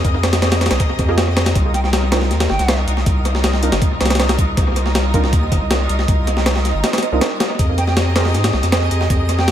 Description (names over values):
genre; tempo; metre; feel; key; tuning
drum and bass, jungle; 159 BPM; 4/4; straight; C minor; A4 = 440 Hz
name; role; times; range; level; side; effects
clear studio string section; sustained chords; 0.0-9.5 s; G3 to Eb5; -26 LUFS; equal; none
saturated sub bass; bass; 0.0-9.5 s; G1 to Ab2; -18 LUFS; equal; none
breakbeat sampler-style drum kit; drums; 0.0-9.5 s; hi-hat, kick drum, snare drum; -17 LUFS; equal; analog delay
twinkling granular texture; texture; 0.0-9.5 s; Eb5 to Eb6; -26 LUFS; right 1 dB; built-in reverb
deep mellow chord stab; stabs; 1.1-8.2 s; C4 to Eb5; -26 LUFS; right 4 dB; none
hollow concert flute; melody; 1.7-2.8, 7.8-9.5 s; G5; -26 LUFS; right 2 dB; vintage 12-bit sampler grit, dub echo
room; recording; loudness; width
light reverb; echo-heavy mix; -14 LUFS; side -10 dB against mid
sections
0.0-9.5 A section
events
none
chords
0.0 Fm11; 1.6 Cm11; 7.6 Fm11